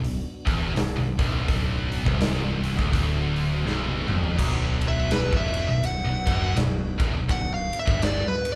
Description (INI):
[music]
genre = stoner and doom metal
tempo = 82 BPM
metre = 4/4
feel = swing 59% on 8ths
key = B minor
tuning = A4 = 440 Hz
[part]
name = tonewheel organ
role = sustained chords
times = 0.0-8.6 s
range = B3 to F#4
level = -44 LUFS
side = equal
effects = none
[part]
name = heavy high-gain guitar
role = riff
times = 0.0-8.2 s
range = B1 to A2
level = -32 LUFS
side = equal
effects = distortion
[part]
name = thick fuzz guitar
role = riff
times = 0.0-8.2 s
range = B1 to A2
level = -34 LUFS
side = equal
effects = none
[part]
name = thick fuzz guitar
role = riff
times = 0.0-8.2 s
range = B1 to A2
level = -33 LUFS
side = equal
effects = none
[part]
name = growling picked electric bass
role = bass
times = 0.0-8.2 s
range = B0 to A1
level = -34 LUFS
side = equal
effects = overdrive
[part]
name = big rock drum kit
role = drums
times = 0.0-8.6 s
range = crash cymbal, hi-hat, kick drum, ride cymbal, snare drum, toms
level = -29 LUFS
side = equal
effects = none
[part]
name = fuzz lead guitar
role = melody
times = 4.9-8.6 s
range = B4 to F#5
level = -30 LUFS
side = equal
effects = distortion
[sound]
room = moderate large studio reverb, RT60 1.2 s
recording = band playing live in one room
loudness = -25 LUFS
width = mono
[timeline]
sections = 0.0-4.4 A section; 4.4-8.6 B section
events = drum fill 3.7-4.4; lead electric guitar solo 4.4-8.6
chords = 0.0 Bm